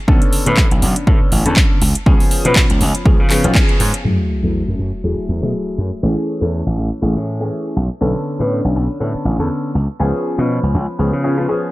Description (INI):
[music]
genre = filtered disco house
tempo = 121 BPM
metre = 4/4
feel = swing 56% on 16ths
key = F# minor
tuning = A4 = 440 Hz
[part]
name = clear baby grand piano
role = accompaniment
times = 0.1-11.7 s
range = D3 to B4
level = -20 LUFS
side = left 1 dB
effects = phaser, sidechain pumping, low-pass filter
[part]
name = gritty slap bass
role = bass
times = 0.1-11.5 s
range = A1 to C#3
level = -18 LUFS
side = equal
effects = overdrive, sidechain pumping, low-pass filter
[part]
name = electronic kick drum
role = drums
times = 0.1-3.7 s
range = none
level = -14 LUFS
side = equal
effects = overdrive
[part]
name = house drum kit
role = drums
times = 0.2-4.2 s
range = crash cymbal, handclaps, hi-hat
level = -20 LUFS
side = equal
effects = overdrive, sidechain pumping on hats, low-pass filter on hats, low-pass filter on snare, sidechain pumping on cymbals, low-pass filter on cymbals, low-pass filter on room
[part]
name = sub drop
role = sound effects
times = 4.0-6.0 s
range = none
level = -24 LUFS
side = equal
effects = none
[sound]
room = little or no reverb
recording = none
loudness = -14 LUFS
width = side -19 dB against mid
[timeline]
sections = 0.0-4.0 A section; 4.0-11.7 B section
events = band accent 3.6; impact 4.0-6.0; filter sweep 4.0-11.7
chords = 0.0 Bm9; 1.8 C#7; 4.0 F#m9; 6.0 Amaj7; 7.8 Bm9; 9.8 C#7